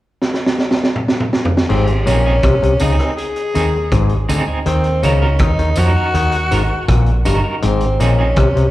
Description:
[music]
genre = roots reggae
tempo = 81 BPM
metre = 4/4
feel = straight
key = Ab mixolydian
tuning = A4 = 440 Hz
[part]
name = crunchy breakbeat drum kit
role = drums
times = 0.2-8.7 s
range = crash cymbal, hi-hat, kick drum, rim click, snare drum, toms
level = -18 LUFS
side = right 1 dB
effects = tape echo
[part]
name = raspy tenor saxophone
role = melody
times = 1.7-8.7 s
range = C4 to Ab4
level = -20 LUFS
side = equal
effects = tape echo, slapback echo
[part]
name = auto-wah clav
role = riff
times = 1.7-8.7 s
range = G2 to F3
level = -20 LUFS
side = left 4 dB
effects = overdrive, slapback echo
[part]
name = vintage muted fingered electric bass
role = bass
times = 1.7-8.7 s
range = G1 to F2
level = -15 LUFS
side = equal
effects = none
[part]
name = electric guitar at the edge of break-up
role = accompaniment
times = 2.1-8.3 s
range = C4 to Bb4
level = -23 LUFS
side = right 3 dB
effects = tremolo, tape echo, slapback echo
[part]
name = tambourine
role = percussion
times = 2.1-8.2 s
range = none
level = -34 LUFS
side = right 1 dB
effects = none
[sound]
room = light reverb, small room reverb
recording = live gig heard through the venue's PA, club reverb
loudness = -13 LUFS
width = side -16 dB against mid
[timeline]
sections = 0.0-1.7 A section; 1.7-8.7 B section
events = drum fill 0.2-1.7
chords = 0.0 N.C.; 1.7 Ab; 4.7 Ebm; 7.6 Ab

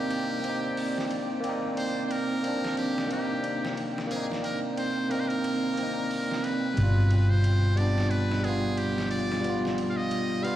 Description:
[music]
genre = trip hop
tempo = 90 BPM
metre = 4/4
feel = swing 59% on 16ths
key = C minor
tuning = A4 = 440 Hz
[part]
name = trumpet with metal mute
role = melody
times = 0.0-10.6 s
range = G4 to F5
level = -34 LUFS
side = equal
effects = tape echo
[part]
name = overdriven tine electric piano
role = accompaniment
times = 0.0-10.6 s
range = B2 to F4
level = -29 LUFS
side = equal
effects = harmonic tremolo, vintage 12-bit sampler grit, tape echo
[part]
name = deep dark ambient pad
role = sustained chords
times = 0.0-10.6 s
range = C4 to F5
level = -35 LUFS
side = right 2 dB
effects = chorus, built-in reverb
[part]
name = hollow-body short-scale fingered electric bass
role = bass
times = 0.0-10.6 s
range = G1 to C2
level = -25 LUFS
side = equal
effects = none
[part]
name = wind-like tuned noise texture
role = texture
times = 0.1-10.6 s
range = G5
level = -44 LUFS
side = right 5 dB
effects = none
[part]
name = trip hop sampler-style drum kit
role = drums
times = 0.1-10.6 s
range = hi-hat, ride cymbal, snare drum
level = -40 LUFS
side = right 1 dB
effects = high-pass filter on cymbals, high-pass filter on snare, high-pass filter on hats
[sound]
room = light reverb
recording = played on a big sound system in a bare room, large studio reverb, vinyl crackle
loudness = -25 LUFS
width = side -12 dB against mid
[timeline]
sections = 0.0-10.6 A section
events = none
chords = 0.0 Cm7; 6.8 G7

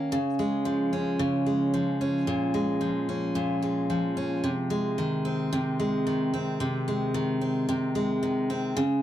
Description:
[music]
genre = pop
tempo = 111 BPM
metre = 4/4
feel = swing 60% on 16ths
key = Ab major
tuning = A4 = 439 Hz
[part]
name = picked steel-string acoustic guitar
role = solo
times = 0.0-9.0 s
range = Bb2 to Db4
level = -25 LUFS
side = equal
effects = none
[sound]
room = moderate studio reverb, RT60 0.6 s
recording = dark, warm production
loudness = -25 LUFS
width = side -12 dB against mid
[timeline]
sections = 0.1-8.8 A section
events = none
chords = 0.1 Db; 2.3 Bbm7; 4.4 Ab/C

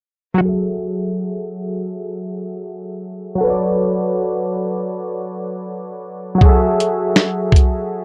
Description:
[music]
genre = lo-fi hip hop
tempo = 80 BPM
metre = 4/4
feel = swing 64% on 16ths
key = F# minor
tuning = A4 = 440 Hz
[part]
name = warm analog keys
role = accompaniment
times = 0.3-8.0 s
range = F#3 to E5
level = -21 LUFS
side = equal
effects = chorus, low-pass filter
[part]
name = dusty soul sampler-style drum kit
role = drums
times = 6.4-7.8 s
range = finger snaps, hi-hat, kick drum, snare drum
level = -14 LUFS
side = equal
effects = vintage 12-bit sampler grit
[sound]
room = little or no reverb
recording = none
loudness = -19 LUFS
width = mono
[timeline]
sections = 0.4-8.0 A section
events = filter sweep on synth keys 0.4-8.0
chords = 0.4 F#m9; 3.4 Bm9/F#; 6.4 F#m9

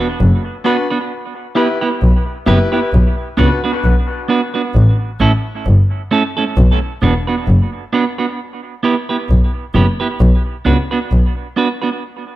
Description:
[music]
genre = reggae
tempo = 66 BPM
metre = 4/4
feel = swing 56% on 16ths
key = B minor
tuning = A4 = 435 Hz
[part]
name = clean electric guitar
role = accompaniment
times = 0.0-11.9 s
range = A3 to B4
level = -18 LUFS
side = right 4 dB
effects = high-pass filter, dub echo
[part]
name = rich double bass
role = bass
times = 0.2-11.2 s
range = E1 to C#2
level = -12 LUFS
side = equal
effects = none
[part]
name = bright grand piano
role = stabs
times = 0.6-3.6 s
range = D4 to B4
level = -21 LUFS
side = left 4 dB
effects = high-pass filter, dub echo
[sound]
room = light reverb, small room reverb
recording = echo-heavy mix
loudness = -13 LUFS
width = side -15 dB against mid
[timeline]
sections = 0.0-12.4 A section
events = break 12.0-12.4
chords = 0.0 Bm; 1.1 Em; 2.9 Bm; 4.7 A; 6.6 Bm; 8.4 Em; 10.2 Bm

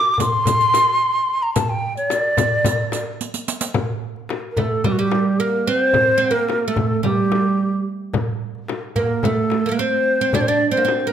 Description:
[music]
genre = Arabic maqam ensemble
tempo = 109 BPM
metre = 4/4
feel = straight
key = unclear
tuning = A4 = 440 Hz
[part]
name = ney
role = melody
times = 0.0-11.1 s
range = F#4 to D6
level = -18 LUFS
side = equal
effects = slapback echo
[part]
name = darbuka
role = percussion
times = 0.0-11.1 s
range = none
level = -25 LUFS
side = right 1 dB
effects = none
[part]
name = frame drum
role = percussion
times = 0.2-11.0 s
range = none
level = -25 LUFS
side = left 7 dB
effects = none
[part]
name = riq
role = percussion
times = 0.2-3.7 s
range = none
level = -28 LUFS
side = right 6 dB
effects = none
[part]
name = oud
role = second line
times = 4.6-11.1 s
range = G3 to D4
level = -21 LUFS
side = right 5 dB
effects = none
[sound]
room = moderate recital hall reverb, RT60 1.3 s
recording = close, detailed microphones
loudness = -17 LUFS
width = side -9 dB against mid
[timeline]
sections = 0.0-3.7 A section; 3.7-11.1 B section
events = drum fill 3.2-3.7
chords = none

